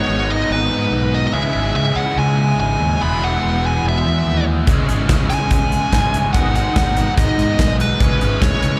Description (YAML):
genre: indie rock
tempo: 144 BPM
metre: 4/4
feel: straight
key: unclear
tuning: A4 = 440 Hz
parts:
  - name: nasal lead guitar with a parked wah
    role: melody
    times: 0.0-8.8 s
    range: B4 to B5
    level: -23 LUFS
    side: equal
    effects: overdrive, slapback echo, digital delay
  - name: crunchy overdriven guitar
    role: riff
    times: 0.0-8.8 s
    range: G#2 to G#4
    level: -24 LUFS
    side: equal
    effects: ensemble chorus, slapback echo
  - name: overdriven electric guitar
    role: riff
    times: 0.0-8.8 s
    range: D#3 to G#4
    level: -29 LUFS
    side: equal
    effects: slapback echo
  - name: growling fingered electric bass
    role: bass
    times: 0.1-8.8 s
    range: E1 to G#2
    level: -22 LUFS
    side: equal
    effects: overdrive
  - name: big rock drum kit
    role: drums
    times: 4.7-8.7 s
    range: hi-hat, kick drum, snare drum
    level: -20 LUFS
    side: equal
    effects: none
room: studio reverb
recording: live gig heard through the venue's PA, recital hall reverb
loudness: -17 LUFS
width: mono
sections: 0.0-8.8 A section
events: none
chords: 0.0 G#m; 1.3 C#m; 3.0 E; 4.7 C#m; 6.3 G#m7; 8.0 C#m